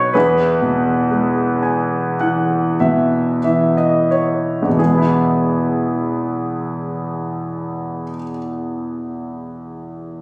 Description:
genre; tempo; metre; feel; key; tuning
classical, lyrical solo piano; 43-64 BPM; 4/4; rubato; E major; A4 = 440 Hz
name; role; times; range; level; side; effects
clear concert grand piano; solo; 0.0-10.2 s; E2 to G#5; -19 LUFS; equal; none
room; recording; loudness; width
light reverb; recorded on a phone in the room, studio reverb; -18 LUFS; mono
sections
0.0-4.8 A section; 4.8-10.2 B section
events
slowing down 0.0-4.8; grand piano fill 1.1-4.8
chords
0.1 E

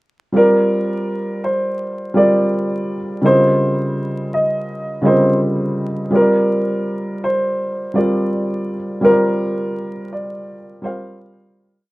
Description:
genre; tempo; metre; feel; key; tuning
lo-fi hip hop; 83 BPM; 4/4; swing 62% on 16ths; Bb major; A4 = 445 Hz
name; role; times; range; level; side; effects
felt-muted upright piano; accompaniment; 0.3-11.9 s; Db3 to F5; -18 LUFS; equal; cassette tape, low-pass filter
dark upright piano; melody; 0.4-11.2 s; Bb4 to Eb5; -18 LUFS; equal; low-pass filter
room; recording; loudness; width
wet studio reverb, RT60 0.6 s; rough home demo mix, vinyl crackle; -15 LUFS; side -20 dB against mid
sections
0.3-11.9 A section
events
fade-out 9.0-11.9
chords
0.3 Bbadd9; 3.2 Dbmaj9; 6.1 Bbadd9

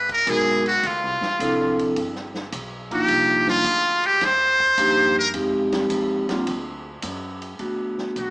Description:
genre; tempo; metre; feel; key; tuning
jazz, small-group swing and bop; 106 BPM; 4/4; swing 69% on 8ths; unclear; A4 = 440 Hz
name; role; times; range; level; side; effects
trumpet with metal mute; melody; 0.0-8.3 s; F4 to C5; -18 LUFS; equal; none
upright bass; bass; 0.0-8.3 s; G1 to G2; -37 LUFS; equal; none
open jazz drum kit; drums; 0.1-8.3 s; hi-hat, kick drum, ride cymbal, snare drum; -32 LUFS; right 1 dB; none
vibraphone with medium mallets; accompaniment; 0.3-8.3 s; F3 to Bb4; -23 LUFS; equal; none
room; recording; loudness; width
moderate large studio reverb, RT60 1.3 s; small speaker sound; -18 LUFS; side -25 dB against mid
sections
0.0-7.6 A section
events
none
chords
0.0 Abm9; 0.8 Dm9; 2.0 G7; 3.1 Cm11; 5.3 Fm9; 6.5 D; 7.6 Gmaj9 (rootless)

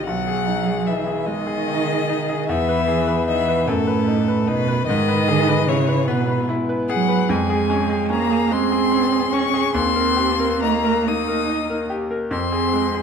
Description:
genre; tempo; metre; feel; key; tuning
classical, slow romantic movement for piano trio; 49 BPM (dotted quarters); 6/8; rubato; unclear; A4 = 439 Hz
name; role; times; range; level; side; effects
rich violin; melody; 0.0-13.0 s; A4 to Eb6; -24 LUFS; left 10 dB; none
rich cello; second line; 0.0-13.0 s; A2 to Eb4; -21 LUFS; right 6 dB; none
bright concert grand piano; accompaniment; 0.0-13.0 s; B1 to B4; -22 LUFS; left 1 dB; none
room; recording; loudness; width
wet recital hall reverb, RT60 1.7 s; dark, warm production; -17 LUFS; side -6 dB against mid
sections
0.0-13.0 A section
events
none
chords
0.1 G#m/B; 2.5 Emaj7; 3.7 B7/F#; 4.9 E/G#; 7.3 Db/F; 9.7 Eb; 12.3 Fm

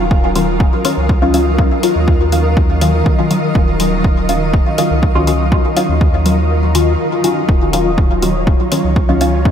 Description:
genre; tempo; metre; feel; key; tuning
dub techno; 122 BPM; 4/4; straight; Eb minor; A4 = 440 Hz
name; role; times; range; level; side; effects
granular cloud pad; sustained chords; 0.0-9.5 s; Eb3 to Eb5; -19 LUFS; equal; built-in reverb, sidechain pumping
filtered dub chord stab; stabs; 0.0-9.4 s; Eb3 to F4; -16 LUFS; left 2 dB; chorus, phaser, sidechain pumping, dub echo
pure sine sub bass; bass; 0.0-9.5 s; Eb1 to Eb2; -17 LUFS; equal; sidechain pumping
flickering grainy texture; texture; 0.0-9.5 s; Bb4 to Db5; -25 LUFS; right 3 dB; built-in reverb, analog chorus, sidechain pumping
electronic kick drum; drums; 0.1-9.5 s; none; -13 LUFS; equal; overdrive
electronic hi-hat; drums; 0.4-9.3 s; none; -24 LUFS; left 3 dB; overdrive
room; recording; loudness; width
moderate cathedral reverb, RT60 5.4 s; dreamy mix soaked in reverb; -11 LUFS; side -8 dB against mid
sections
0.0-9.5 A section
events
kick drops out 6.5-7.5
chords
0.0 Ebm9

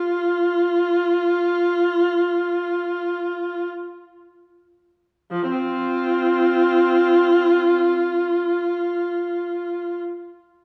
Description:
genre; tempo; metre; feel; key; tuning
classical, free, expressive piece for unaccompanied viola; free time; none; none; unclear; A4 = 441 Hz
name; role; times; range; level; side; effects
warm viola; solo; 0.0-10.0 s; F3 to F4; -21 LUFS; equal; none
room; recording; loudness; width
wet recital hall reverb, RT60 1.6 s; recorded in a church or concert hall; -21 LUFS; mono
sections
0.0-5.3 A section; 5.3-10.0 B section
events
slowing down 0.0-5.3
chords
none

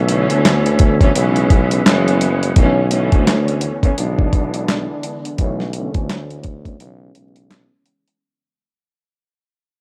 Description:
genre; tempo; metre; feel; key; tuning
hip hop, boom-bap hip-hop; 85 BPM; 4/4; swing 60% on 16ths; B dorian; A4 = 442 Hz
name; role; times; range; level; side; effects
warm studio string section; accompaniment; 0.0-8.1 s; C#3 to D4; -22 LUFS; equal; high-pass filter, low-pass filter
tonewheel organ; sustained chords; 0.0-2.6 s; D3 to F#5; -28 LUFS; equal; overdrive, fast rotary speaker, high-pass filter, low-pass filter
warm tuba; bass; 0.0-7.7 s; F#1 to D2; -21 LUFS; equal; transformer saturation
dusty soul sampler-style drum kit; drums; 0.1-8.2 s; handclaps, hi-hat, kick drum, snare drum; -18 LUFS; equal; none
room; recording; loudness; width
studio reverb; dry, gritty hardware recording, vinyl crackle; -16 LUFS; mono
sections
0.0-2.6 A section; 2.6-8.2 B section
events
fade-out 2.6-8.2; filter sweep on string section 2.6-8.2; break 6.8-8.2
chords
0.0 Bm11; 1.1 C#m7/B; 1.9 F#9sus4; 2.6 Bm11; 4.0 E7/B; 5.4 Bm11; 6.8 C#m7/B

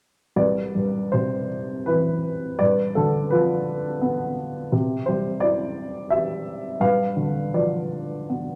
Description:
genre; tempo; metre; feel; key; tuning
classical, lyrical solo piano; 78-89 BPM; 3/4; rubato; C major; A4 = 440 Hz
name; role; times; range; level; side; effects
dark upright piano; solo; 0.4-8.6 s; C2 to F5; -24 LUFS; equal; none
room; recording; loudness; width
moderate recital hall reverb, RT60 1.5 s; none; -24 LUFS; mono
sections
0.4-8.6 A section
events
none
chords
0.4 Cmaj7; 2.6 G7; 4.7 C; 6.8 G7

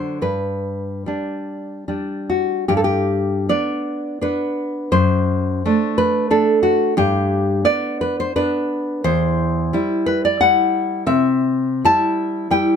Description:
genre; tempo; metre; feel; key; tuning
romantic piece for solo classical guitar; 68-95 BPM; 3/4; rubato; G major; A4 = 440 Hz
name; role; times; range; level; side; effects
nylon-string guitar; solo; 0.0-12.8 s; E2 to A5; -17 LUFS; left 1 dB; none
room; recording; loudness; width
little or no reverb; close, detailed microphones; -17 LUFS; side -7 dB against mid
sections
0.0-2.7 A section; 2.7-12.8 A section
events
none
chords
0.2 G; 4.9 D7/F#; 7.0 G; 9.1 Em; 11.1 C

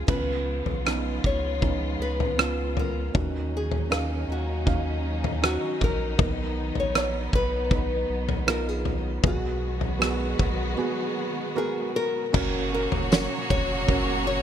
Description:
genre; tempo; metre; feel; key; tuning
pop ballad; 79 BPM; 4/4; straight; F# major; A4 = 440 Hz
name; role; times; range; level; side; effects
felt-muted upright piano; accompaniment; 0.0-14.4 s; B2 to E#5; -31 LUFS; right 4 dB; none
warm symphonic string section; sustained chords; 0.0-14.4 s; A#2 to F#4; -34 LUFS; left 2 dB; none
warm sub bass; bass; 0.0-14.4 s; E#1 to D#2; -30 LUFS; equal; none
nylon-string guitar; melody; 0.1-14.4 s; F#4 to C#5; -31 LUFS; left 3 dB; none
loose indie drum kit; drums; 0.1-14.1 s; crash cymbal, kick drum, rim click, snare drum, toms; -26 LUFS; left 1 dB; none
bright studio violin section; second line; 12.3-14.4 s; A#3 to C#5; -30 LUFS; right 1 dB; none
tambourine; percussion; 13.1-13.3 s; none; -39 LUFS; left 12 dB; none
room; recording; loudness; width
light reverb; bright 1980s-style digital production; -23 LUFS; side -9 dB against mid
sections
0.1-12.3 A section; 12.3-14.4 B section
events
break 10.8-12.3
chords
0.1 C#7; 3.2 D#m7; 6.2 Bmaj7; 9.2 G#m7/B; 12.3 F#

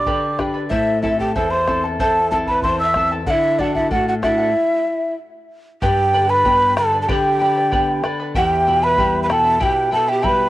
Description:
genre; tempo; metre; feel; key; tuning
andean folk, Andean ensemble; 94 BPM; 2/4; straight; unclear; A4 = 439 Hz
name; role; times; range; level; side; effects
breathy mellow quena; melody; 0.0-10.5 s; D5 to E6; -18 LUFS; equal; cassette tape
breathy hollow large pan pipes; second line; 0.0-10.5 s; D4 to E5; -24 LUFS; right 2 dB; cassette tape
charango; accompaniment; 0.0-10.5 s; E4 to B5; -25 LUFS; left 1 dB; cassette tape
nylon-string guitar; accompaniment; 0.0-10.5 s; E2 to D5; -24 LUFS; left 2 dB; cassette tape
bombo; percussion; 0.1-10.4 s; none; -27 LUFS; equal; none
room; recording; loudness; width
light reverb, small room ambience; home recording on cassette; -15 LUFS; side -15 dB against mid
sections
0.0-5.8 A section; 5.8-10.5 B section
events
stop 4.5-5.8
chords
0.0 G; 0.7 Am; 3.3 D; 4.5 N.C.; 5.8 G; 8.3 Em

